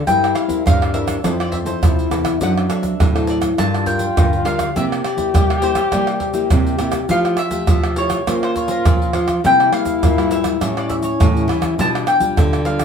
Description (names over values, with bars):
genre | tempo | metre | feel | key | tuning
samba and choro | 102 BPM | 4/4 | straight | unclear | A4 = 439 Hz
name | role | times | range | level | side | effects
nylon-string guitar | accompaniment | 0.0-12.8 s | G2 to C5 | -24 LUFS | left 2 dB | none
mandolin | melody | 0.1-12.8 s | Bb4 to A5 | -21 LUFS | left 2 dB | none
mellow trombone | second line | 0.1-12.7 s | C4 to G4 | -22 LUFS | left 3 dB | none
nylon-string guitar | bass | 0.1-12.8 s | E2 to G3 | -22 LUFS | equal | none
egg shaker, surdo, pandeiro and tamborim | percussion | 0.1-12.8 s | none | -19 LUFS | right 2 dB | none
room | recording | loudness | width
wet studio reverb, RT60 0.5 s | band playing live in one room | -15 LUFS | side -7 dB against mid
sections
0.0-12.8 A section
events
none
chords
0.1 C7/G; 1.2 Fmaj7; 2.4 D7/F#; 3.6 Gm7; 4.8 C7; 7.1 Fmaj9; 8.3 Bbmadd9; 9.4 C7; 10.6 A7; 11.8 G7/B